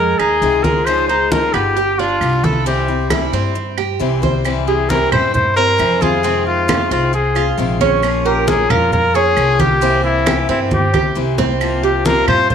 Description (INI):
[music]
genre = latin, Cuban son and guajira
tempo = 134 BPM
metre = 4/4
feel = straight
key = unclear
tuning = A4 = 440 Hz
[part]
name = warm trumpet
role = melody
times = 0.0-12.5 s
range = E4 to C5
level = -16 LUFS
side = left 2 dB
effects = none
[part]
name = Cuban tres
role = arpeggios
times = 0.0-12.5 s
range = Ab3 to Db5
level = -20 LUFS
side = right 9 dB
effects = none
[part]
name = upright bass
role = bass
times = 0.0-12.5 s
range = G1 to G2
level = -21 LUFS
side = equal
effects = none
[part]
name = claves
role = percussion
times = 0.2-12.5 s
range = none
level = -26 LUFS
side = right 12 dB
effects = none
[part]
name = congas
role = percussion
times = 0.2-12.5 s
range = none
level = -21 LUFS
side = right 1 dB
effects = none
[part]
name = picked steel-string acoustic guitar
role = accompaniment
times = 0.4-12.5 s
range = C3 to F4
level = -22 LUFS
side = left 10 dB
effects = none
[sound]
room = moderate echo chamber reverb, RT60 1.8 s, small room ambience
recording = 1960s-style stereo with parts hard left and right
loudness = -13 LUFS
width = side -7 dB against mid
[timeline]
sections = 0.0-4.4 A section; 4.4-12.5 B section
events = drum fill 10.7-11.6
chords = 0.0 Fm7; 0.9 Dbadd9; 1.8 G7; 2.7 C; 6.2 Fm7; 8.0 Bbm; 9.8 C7; 11.6 C7sus4